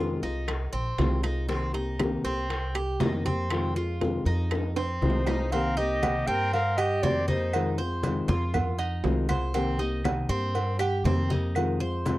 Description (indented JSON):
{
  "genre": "latin, Cuban son and guajira",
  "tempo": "119 BPM",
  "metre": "4/4",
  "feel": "straight",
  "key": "C minor",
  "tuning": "A4 = 440 Hz",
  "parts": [
    { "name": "nylon-string guitar", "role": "accompaniment", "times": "0.0-12.2 s", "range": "C3 to G4", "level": "-30 LUFS", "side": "left 2 dB", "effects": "none" },
    { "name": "Cuban tres", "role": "arpeggios", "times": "0.0-12.2 s", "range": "C4 to C5", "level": "-33 LUFS", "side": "right 2 dB", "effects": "none" },
    { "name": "upright bass", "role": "bass", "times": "0.0-12.2 s", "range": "Bb1 to G2", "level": "-30 LUFS", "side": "equal", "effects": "none" },
    { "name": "bongos and cowbell", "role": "percussion", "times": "0.2-12.2 s", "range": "none", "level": "-36 LUFS", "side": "left 4 dB", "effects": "none" },
    { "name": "claves", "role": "percussion", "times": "0.5-11.8 s", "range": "none", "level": "-39 LUFS", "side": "left 4 dB", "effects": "none" },
    { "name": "congas", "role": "percussion", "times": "0.5-12.2 s", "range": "none", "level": "-32 LUFS", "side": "left 1 dB", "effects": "none" },
    { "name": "timbales and agogo bells", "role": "percussion", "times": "0.5-12.2 s", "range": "none", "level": "-33 LUFS", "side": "right 6 dB", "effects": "none" },
    { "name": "mellow clarinet", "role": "melody", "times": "5.0-7.8 s", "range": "C5 to G5", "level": "-29 LUFS", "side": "equal", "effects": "none" },
    { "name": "clear trumpet", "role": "second line", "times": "5.0-7.8 s", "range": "Eb4 to Bb4", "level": "-37 LUFS", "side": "left 3 dB", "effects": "none" }
  ],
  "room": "light reverb",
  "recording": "dry, close 1970s-style studio recording",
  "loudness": "-25 LUFS",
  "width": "side -17 dB against mid",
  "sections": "0.0-5.5 A section; 5.5-12.2 B section",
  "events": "drum fill 4.5-5.5",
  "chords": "0.0 Fm7; 1.5 Cm7; 3.5 Fm7; 5.5 Cm7; 7.5 Fm7; 9.5 Cm7; 11.6 Fm7",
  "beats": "0.49 0.99 | 1.50 2.00 2.50 3.01 | 3.51 4.02 4.52 5.02 | 5.53 6.03 6.53 7.03 | 7.54 8.04 8.54 9.04 | 9.55 10.05 10.55 11.05 | 11.56 12.06"
}